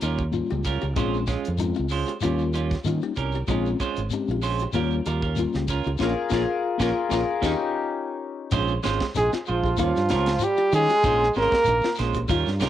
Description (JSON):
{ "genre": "afrobeat", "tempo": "95 BPM", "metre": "4/4", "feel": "swing 54% on 16ths", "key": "Bb dorian", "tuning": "A4 = 441 Hz", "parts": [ { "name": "qanun", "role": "arpeggios", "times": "0.0-12.7 s", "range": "Db4 to Bb4", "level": "-30 LUFS", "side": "left 6 dB", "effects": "cassette tape" }, { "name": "clean electric guitar", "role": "stabs", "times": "0.0-12.7 s", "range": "G3 to C5", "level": "-29 LUFS", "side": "right 8 dB", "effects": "cassette tape" }, { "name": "fingered electric bass", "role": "bass", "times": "0.0-12.7 s", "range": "Ab1 to Eb3", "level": "-26 LUFS", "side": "right 1 dB", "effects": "none" }, { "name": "tight funk drum kit", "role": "drums", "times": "0.0-12.7 s", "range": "hi-hat, kick drum, snare drum", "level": "-31 LUFS", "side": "right 1 dB", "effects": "cassette tape" }, { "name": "shekere", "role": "percussion", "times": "0.0-12.7 s", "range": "none", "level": "-34 LUFS", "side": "left 4 dB", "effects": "none" }, { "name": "mellow tine electric piano", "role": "accompaniment", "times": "0.3-7.5 s", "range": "G3 to G4", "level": "-29 LUFS", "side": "left 7 dB", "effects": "medium stereo tremolo, cassette tape" }, { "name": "warm trumpet", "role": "melody", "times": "9.2-12.0 s", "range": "F4 to Bb4", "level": "-22 LUFS", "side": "equal", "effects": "cassette tape" }, { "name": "bright trombone", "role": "second line", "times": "9.2-12.0 s", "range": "F3 to Bb3", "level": "-29 LUFS", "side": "right 7 dB", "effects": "cassette tape" } ], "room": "moderate spring reverb, RT60 1.5 s, studio reverb", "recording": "home recording on cassette", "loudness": "-21 LUFS", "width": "side -12 dB against mid", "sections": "0.0-8.5 A section; 8.5-12.7 B section", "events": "band accent 6.0-8.5; drum fill 7.3-8.5", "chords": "0.0 Eb9; 1.0 Bbm9; 2.2 Eb9; 3.5 Bbm9; 4.7 Eb9; 6.0 Bbm7; 7.3 Eb7; 8.5 Bbm9; 9.8 Eb9; 11.0 Bbm9", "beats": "0.33 | 0.96 1.59 2.22 2.85 | 3.48 4.11 4.75 5.38 | 6.01 6.64 7.27 7.90 | 8.53 9.15 9.78 10.41 | 11.04 11.67 12.30" }